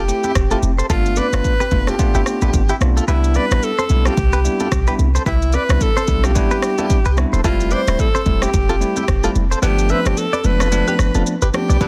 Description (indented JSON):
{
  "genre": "afrobeats",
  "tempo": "110 BPM",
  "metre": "4/4",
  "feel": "swing 58% on 16ths",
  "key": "C major",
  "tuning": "A4 = 440 Hz",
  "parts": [
    { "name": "warm alto saxophone", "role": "melody", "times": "0.0-11.9 s", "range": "E4 to C5", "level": "-24 LUFS", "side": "equal", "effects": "delay" },
    { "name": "direct-recorded clean electric guitar", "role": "riff", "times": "0.0-11.9 s", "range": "E4 to E5", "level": "-27 LUFS", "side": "equal", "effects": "tremolo, delay" },
    { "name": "clean 808-style bass", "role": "bass", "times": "0.0-11.9 s", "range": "D1 to C2", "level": "-20 LUFS", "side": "equal", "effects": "none" },
    { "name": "bell-like tine electric piano", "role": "accompaniment", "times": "0.1-11.9 s", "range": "E3 to G4", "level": "-26 LUFS", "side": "equal", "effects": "none" },
    { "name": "afro-pop drum kit", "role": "drums", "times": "0.1-11.9 s", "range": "kick drum, rim click, shaker", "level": "-22 LUFS", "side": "equal", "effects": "soft clipping on snare" },
    { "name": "congas", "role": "percussion", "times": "0.2-11.9 s", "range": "none", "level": "-32 LUFS", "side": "equal", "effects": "none" },
    { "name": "warm analog pad", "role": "sustained chords", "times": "11.8-11.9 s", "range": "none", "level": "barely audible", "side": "none", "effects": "none" }
  ],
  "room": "little or no reverb",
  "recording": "dense, heavily limited modern master",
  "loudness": "-17 LUFS",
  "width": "mono",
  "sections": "0.0-11.8 A section",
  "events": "kick muted 3.1-4.2, 9.6-11.8",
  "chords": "0.0 Fmaj7; 0.9 G9; 3.1 Cmaj7; 7.4 Fmaj7; 9.6 G9"
}